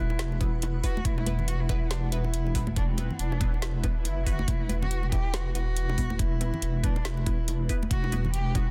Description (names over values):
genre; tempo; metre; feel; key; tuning
deep dubstep; 140 BPM; 4/4; swing 59% on 16ths, half-time; unclear; A4 = 440 Hz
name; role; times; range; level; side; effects
dark cello; melody; 0.0-8.7 s; C4 to G4; -39 LUFS; equal; dub echo
granular cloud pad; sustained chords; 0.0-8.7 s; E4 to B5; -45 LUFS; equal; built-in reverb
filtered dub chord stab; stabs; 0.0-8.7 s; B3 to B4; -43 LUFS; equal; phaser, analog chorus, dub echo
deep soft wobble bass; bass; 0.0-8.7 s; E1 to G1; -31 LUFS; equal; chorus
bongos and congas; percussion; 0.1-8.7 s; none; -39 LUFS; equal; none
garage drum kit; drums; 0.2-8.7 s; hi-hat, snare drum; -38 LUFS; equal; none
electronic kick drum; drums; 0.4-8.7 s; none; -30 LUFS; equal; none
swell; sound effects; 3.7-4.5 s; none; -46 LUFS; equal; none
room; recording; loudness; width
digital ambience; dense, heavily limited modern master; -28 LUFS; mono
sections
0.0-8.7 A section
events
swell 3.8-4.5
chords
0.0 E5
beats
0.19 0.62 | 1.05 1.48 1.91 2.34 | 2.77 3.19 3.62 4.05 | 4.48 4.91 5.34 5.76 | 6.19 6.62 7.05 7.48 | 7.91 8.34